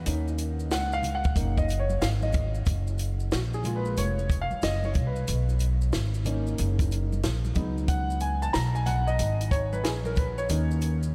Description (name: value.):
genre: hip hop, jazz-hop.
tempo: 92 BPM.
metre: 4/4.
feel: swing 66% on 16ths.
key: F# major.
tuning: A4 = 439 Hz.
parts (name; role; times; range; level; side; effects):
dark concert grand piano; accompaniment; 0.0-11.0 s; F#3 to A#5; -34 LUFS; equal; analog chorus.
upright bass; bass; 0.0-11.1 s; E#1 to D#2; -30 LUFS; equal; none.
compact cocktail drum kit; drums; 0.1-11.0 s; hi-hat, kick drum, snare drum; -32 LUFS; equal; none.
maracas and congas; percussion; 0.1-11.1 s; none; -45 LUFS; equal; none.
room: light reverb, studio reverb.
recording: none.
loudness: -27 LUFS.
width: mono.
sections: 0.0-2.7 A section; 2.7-11.1 A section.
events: grand piano solo 0.0-2.7, 2.7-11.1.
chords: 0.1 F#69; 2.7 F#maj9; 5.3 Bmaj9; 7.6 C#9sus4; 10.5 F#6 (rootless).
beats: | 0.06 0.71 1.36 2.02 | 2.67 3.32 3.97 4.62 | 5.28 5.93 6.58 7.23 | 7.89 8.54 9.19 9.84 | 10.49.